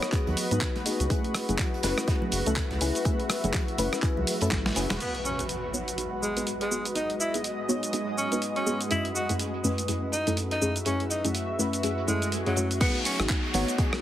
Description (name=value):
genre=deep house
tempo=123 BPM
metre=4/4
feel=swing 59% on 16ths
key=G# phrygian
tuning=A4 = 439 Hz
part: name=deep mellow chord stab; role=stabs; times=0.0-14.0 s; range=F#2 to C#5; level=-30 LUFS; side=left 1 dB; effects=chorus, cassette tape, sidechain pumping
part: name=dusty soul sampler-style drum kit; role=drums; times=0.0-14.0 s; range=crash cymbal, handclaps, hi-hat, rim click, shaker, snare drum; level=-31 LUFS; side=right 1 dB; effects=none
part: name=granular cloud pad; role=texture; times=0.0-14.0 s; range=G#3 to E5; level=-33 LUFS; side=equal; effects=built-in reverb, sidechain pumping
part: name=electronic kick drum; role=drums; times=0.1-4.6, 12.8-13.9 s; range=none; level=-28 LUFS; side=equal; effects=none
part: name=loose indie drum kit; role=drums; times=0.1-13.9 s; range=hi-hat, snare drum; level=-43 LUFS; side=right 2 dB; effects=none
part: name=round analog bass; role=bass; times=0.3-5.0, 13.2-13.6 s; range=E1 to G#2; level=-30 LUFS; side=equal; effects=sidechain pumping
part: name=congas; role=percussion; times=0.3-4.7, 12.8-14.0 s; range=none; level=-38 LUFS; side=right 1 dB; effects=none
part: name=breathy tenor saxophone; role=melody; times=5.0-13.2 s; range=F#3 to F#4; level=-32 LUFS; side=equal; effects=dub echo
part: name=impact, swell and downlifter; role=sound effects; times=5.0-7.0, 12.0-14.0 s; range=none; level=-36 LUFS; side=equal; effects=none
room=light reverb, studio reverb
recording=heavily compressed radio sound, multiband compression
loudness=-25 LUFS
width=side -12 dB against mid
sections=0.0-5.0 A section; 5.0-12.8 B section; 12.8-14.0 C section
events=filter sweep on synth stab 0.0-5.0, 5.0-12.8; drum fill 4.5-5.0; impact 5.0-7.0; swell 12.0-12.8; drop 12.8-14.0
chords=0.0 G#m7; 1.1 F#m7; 5.0 G#m7; 8.9 F#m7; 12.8 G#m7